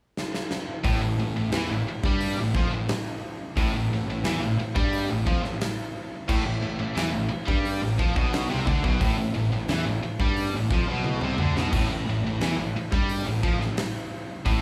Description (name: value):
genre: hard rock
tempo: 88 BPM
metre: 4/4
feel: straight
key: A minor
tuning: A4 = 440 Hz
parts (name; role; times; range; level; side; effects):
- huge arena drum kit; drums; 0.2-14.6 s; crash cymbal, hi-hat, kick drum, snare drum, toms; -30 LUFS; equal; none
- distorted electric guitar; riff; 0.8-14.6 s; A2 to G3; -34 LUFS; equal; overdrive
- high-gain distorted guitar; riff; 0.8-14.6 s; A2 to G3; -34 LUFS; equal; distortion
- overdriven semi-hollow guitar; riff; 0.8-14.6 s; A2 to G3; -34 LUFS; equal; none
- fuzz picked electric bass; bass; 0.8-14.6 s; A1 to G2; -33 LUFS; equal; overdrive
room: moderate large studio reverb, RT60 1.1 s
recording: band playing live in one room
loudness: -26 LUFS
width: mono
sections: 0.8-14.6 A section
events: drum fill 0.2-0.8, 11.1-11.7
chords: 0.0 N.C.; 0.8 A5